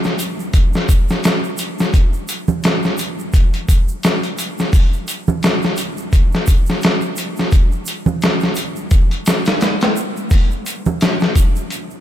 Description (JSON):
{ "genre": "trip hop", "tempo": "86 BPM", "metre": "4/4", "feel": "swing 57% on 16ths", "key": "none", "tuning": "none", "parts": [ { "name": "egg shaker and congas", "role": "percussion", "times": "0.0-12.0 s", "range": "none", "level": "-24 LUFS", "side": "right 4 dB", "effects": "none" }, { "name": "dusty soul sampler-style drum kit", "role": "drums", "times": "0.1-11.9 s", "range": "hi-hat, kick drum, snare drum", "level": "-14 LUFS", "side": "equal", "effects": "overdrive" } ], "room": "moderate cathedral reverb, RT60 4.0 s", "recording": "dreamy mix soaked in reverb", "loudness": "-14 LUFS", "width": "side -12 dB against mid", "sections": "0.0-12.0 A section", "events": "break 11.7", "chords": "none" }